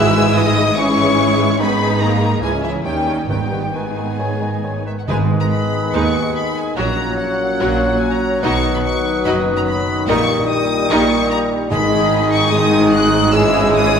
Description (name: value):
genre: classical, dramatic, fast romantic movement for symphony orchestra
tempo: 145 BPM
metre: 4/4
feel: rubato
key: G# minor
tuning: A4 = 443 Hz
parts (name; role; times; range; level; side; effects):
- rich symphonic violin section; melody; 0.0-14.0 s; E5 to F#6; -23 LUFS; left 4 dB; none
- dark clarinet; second line; 0.0-14.0 s; G#4 to D#5; -24 LUFS; left 4 dB; none
- mellow hollow silver concert flute; second line; 0.0-14.0 s; E5 to F#6; -25 LUFS; left 2 dB; none
- warm symphonic violin section; second line; 0.0-14.0 s; E4 to E5; -27 LUFS; left 1 dB; none
- warm bassoon; accompaniment; 0.0-14.0 s; D#3 to G#3; -24 LUFS; right 1 dB; none
- warm studio viola section; accompaniment; 0.0-14.0 s; D#3 to G#4; -24 LUFS; right 1 dB; none
- mellow French horn section; sustained chords; 0.0-14.0 s; E3 to E4; -22 LUFS; left 3 dB; none
- warm trombone section; sustained chords; 0.0-14.0 s; G#2 to C#4; -24 LUFS; right 3 dB; none
- rich symphonic double bass section; bass; 0.0-14.0 s; F#1 to D#2; -23 LUFS; right 3 dB; none
- warm symphonic cello section; bass; 0.0-14.0 s; C#2 to B2; -23 LUFS; right 2 dB; none
- timpani; percussion; 0.0-0.5, 3.3-5.7, 11.7-12.3 s; G#2; -25 LUFS; right 1 dB; none
room: wet scoring stage reverb, RT60 1.8 s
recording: minimal, uncompressed stereo recording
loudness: -14 LUFS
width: side -7 dB against mid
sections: 0.0-5.1 A section; 5.1-14.0 B section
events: none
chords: 0.0 C#m/G#; 1.6 G#m; 2.4 C#m; 2.8 D#7; 3.3 G#m; 6.8 F#/A#; 8.4 B; 10.1 D#7/A#; 11.7 G#m; 13.3 C#m/G#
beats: 0.37 0.78 1.19 | 1.60 2.00 2.42 2.85 | 3.29 3.75 4.20 4.64 | 5.08 5.51 5.93 6.36 | 6.77 7.18 7.60 8.01 | 8.43 8.84 9.26 9.67 | 10.08 10.49 10.91 11.31 | 11.72 12.12 12.52 12.93 | 13.33 13.74